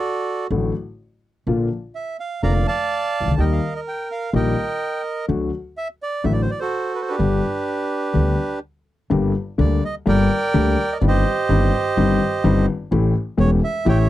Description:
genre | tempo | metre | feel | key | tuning
tango | 126 BPM | 4/4 | rubato | unclear | A4 = 438 Hz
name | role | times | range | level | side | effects
bandoneon | melody | 0.0-14.1 s | D4 to Bb5 | -22 LUFS | right 3 dB | none
dark concert grand piano | accompaniment | 0.5-14.1 s | E1 to G4 | -20 LUFS | left 4 dB | none
upright bass | bass | 0.5-14.1 s | E1 to Eb2 | -21 LUFS | right 1 dB | none
room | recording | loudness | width
little or no reverb | dry, close 1970s-style studio recording | -18 LUFS | side -14 dB against mid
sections
0.0-9.1 A section; 9.1-14.1 B section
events
none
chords
0.0 D; 1.5 Bb; 3.4 Eb; 5.3 D; 7.2 G; 9.1 Gm; 11.0 Cm/G; 12.9 A7

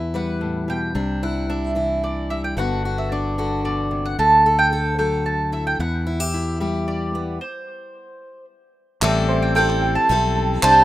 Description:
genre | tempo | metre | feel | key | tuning
indie folk with a building arrangement | 112 BPM | 3/4 | straight | unclear | A4 = 442 Hz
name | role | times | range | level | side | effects
fingerpicked steel-string acoustic guitar | accompaniment | 0.0-7.4 s | E2 to B4 | -25 LUFS | left 2 dB | none
fingered electric bass | bass | 0.0-10.8 s | G1 to E2 | -24 LUFS | equal | none
mandolin | melody | 0.2-10.8 s | C5 to A5 | -21 LUFS | right 2 dB | none
picked steel-string acoustic guitar | accompaniment | 9.0-10.8 s | A2 to A4 | -22 LUFS | left 5 dB | none
warm upright piano | arpeggios | 9.0-10.8 s | A4 to A5 | -26 LUFS | right 3 dB | none
group handclap | percussion | 9.0-10.8 s | none | -22 LUFS | right 2 dB | none
room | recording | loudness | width
light reverb | rough home demo mix | -18 LUFS | side -14 dB against mid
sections
0.0-9.0 A section; 9.0-10.8 B section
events
stop 7.4-9.0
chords
0.0 Emadd9; 1.0 Cadd9; 2.6 Gmaj7; 4.2 Dadd9; 5.8 Em; 7.4 N.C.; 9.0 Am7

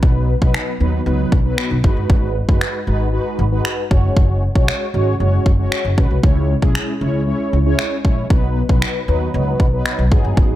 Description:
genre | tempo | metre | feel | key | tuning
dance-pop | 116 BPM | 4/4 | straight | B major | A4 = 441 Hz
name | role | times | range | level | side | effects
mellow synth brass | accompaniment | 0.0-10.6 s | F#3 to C#5 | -21 LUFS | equal | chorus, phaser, sidechain pumping
upright bass | bass | 0.0-10.6 s | F#1 to D#2 | -18 LUFS | equal | sidechain pumping
house drum kit | drums | 0.0-10.5 s | finger snaps, kick drum | -16 LUFS | equal | none
room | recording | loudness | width
digital ambience | none | -14 LUFS | side -14 dB against mid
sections
0.0-10.6 A section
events
none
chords
0.0 B; 1.8 G#m7; 3.9 F#sus2; 6.2 C#m; 8.3 B

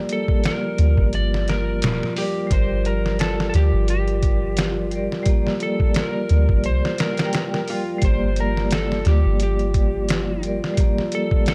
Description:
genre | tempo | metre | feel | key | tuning
trip hop | 87 BPM | 4/4 | swing 56% on 16ths | G minor | A4 = 440 Hz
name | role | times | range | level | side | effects
vibraphone with medium hard mallets | accompaniment | 0.0-11.5 s | G3 to G5 | -28 LUFS | equal | tremolo, tape echo
dark analog pad | sustained chords | 0.0-11.5 s | F3 to F4 | -33 LUFS | equal | chorus
electric slide guitar | melody | 0.1-11.5 s | F4 to D5 | -30 LUFS | equal | tape echo
trip hop sampler-style drum kit | drums | 0.1-11.5 s | hi-hat, kick drum, snare drum | -24 LUFS | equal | none
soft 808-style bass | bass | 0.8-10.6 s | D1 to D2 | -23 LUFS | equal | none
room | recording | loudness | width
digital ambience | dark, warm production | -21 LUFS | mono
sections
0.0-11.5 A section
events
none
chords
0.0 Gm; 2.5 Bb/G; 8.0 Gm

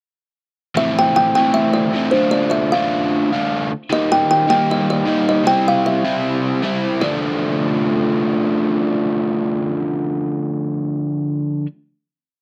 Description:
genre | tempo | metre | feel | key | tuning
rock | 154 BPM | 4/4 | straight | D minor | A4 = 440 Hz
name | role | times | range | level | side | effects
kalimba | melody | 0.8-11.6 s | C5 to G5 | -20 LUFS | equal | none
overdriven electric guitar | riff | 0.8-11.7 s | A2 to F4 | -20 LUFS | equal | none
room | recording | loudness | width
moderate studio ambience, RT60 0.5 s | dark, warm production | -18 LUFS | mono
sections
0.8-7.0 pre-chorus; 7.0-10.2 final chord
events
none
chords
0.8 Am; 2.1 Dm; 3.9 Eb; 5.5 C; 7.0 Dm

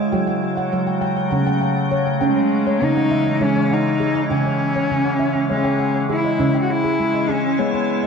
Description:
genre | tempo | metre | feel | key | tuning
world meditative, meditative tuned percussion | 201 BPM (eighths) | 7/8 | straight | C# minor | A4 = 440 Hz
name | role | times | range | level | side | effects
icy glass pad | sustained chords | 0.0-8.1 s | C#3 to E4 | -22 LUFS | equal | chorus, built-in reverb
handpan | arpeggios | 0.0-8.1 s | C#3 to G5 | -20 LUFS | right 1 dB | ping-pong delay
dark cello | melody | 2.2-8.1 s | G#3 to F#4 | -20 LUFS | left 2 dB | none
room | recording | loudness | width
wet echo chamber reverb, RT60 1.6 s, studio reverb | dark, warm production | -17 LUFS | side -5 dB against mid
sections
0.0-6.4 A section; 6.4-8.1 B section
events
none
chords
0.1 F#m; 2.2 C#m

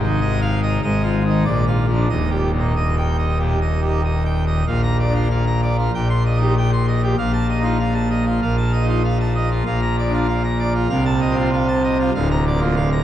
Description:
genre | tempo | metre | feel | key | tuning
classical, organ toccata | 96 BPM | 4/4 | straight | Eb major, Bb major from 4.7 s | A4 = 440 Hz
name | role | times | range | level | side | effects
pipe organ, full organ | solo | 0.0-13.0 s | D1 to C6 | -16 LUFS | equal | none
room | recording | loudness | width
wet cathedral reverb, RT60 5.6 s | dark, warm production, vinyl crackle | -16 LUFS | side -11 dB against mid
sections
0.0-4.7 A section; 4.7-13.0 B section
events
none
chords
0.0 Fm7/Ab; 1.5 Bb; 2.1 Eb; 4.7 Bb; 5.9 Cm/Bb; 7.2 F7/Bb; 9.7 Bb; 10.9 F7/C; 12.1 Bb/D

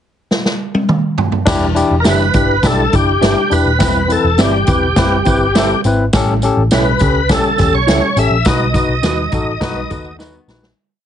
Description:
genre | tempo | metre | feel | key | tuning
uptempo 1960s-style soul | 103 BPM | 4/4 | straight | E minor | A4 = 441 Hz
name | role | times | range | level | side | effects
swinging big-band drum kit | drums | 0.3-10.8 s | crash cymbal, hi-hat, kick drum, snare drum, toms | -16 LUFS | right 1 dB | none
barky tine electric piano | accompaniment | 1.5-10.7 s | A2 to D5 | -18 LUFS | left 4 dB | overdrive
vintage muted picked electric bass | bass | 1.5-10.7 s | D#1 to E2 | -18 LUFS | equal | none
tambourine | percussion | 1.5-10.6 s | none | -30 LUFS | right 5 dB | none
bright tonewheel organ | melody | 2.0-10.2 s | G4 to E5 | -16 LUFS | equal | overdrive, chorus vibrato, slow rotary speaker
electric guitar through a small old amp | stabs | 2.0-10.3 s | C4 to E5 | -19 LUFS | right 5 dB | none
archtop guitar, miked and amplified | riff | 9.6-10.8 s | D#3 to B4 | -34 LUFS | left 8 dB | none
room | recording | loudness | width
light reverb | heavily compressed radio sound, nothing above 10.5 kHz | -11 LUFS | side -9 dB against mid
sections
0.0-1.5 pickup bar; 1.5-10.8 verse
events
drum fill 0.3-1.5, 10.2-10.8; fade-out 8.5-10.8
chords
0.0 N.C.; 1.5 Em7; 3.8 Cmaj7/E; 6.1 A7; 8.5 B

